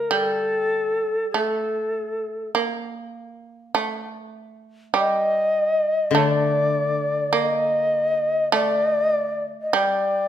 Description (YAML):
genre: japanese traditional, Japanese chamber music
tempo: 50 BPM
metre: 4/4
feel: rubato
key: D miyako bushi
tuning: A4 = 440 Hz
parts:
  - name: reedy shakuhachi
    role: melody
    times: 0.0-10.3 s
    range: A4 to Eb5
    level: -21 LUFS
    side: left 1 dB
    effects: none
  - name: shamisen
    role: second line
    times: 0.0-10.3 s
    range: G3 to Bb3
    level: -25 LUFS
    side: right 5 dB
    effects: none
  - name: koto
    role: accompaniment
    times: 0.0-9.5 s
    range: D3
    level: -25 LUFS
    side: left 7 dB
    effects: none
room: moderate recital hall reverb, RT60 1.4 s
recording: minimal, uncompressed stereo recording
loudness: -20 LUFS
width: side -10 dB against mid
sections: 0.0-10.3 A section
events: none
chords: none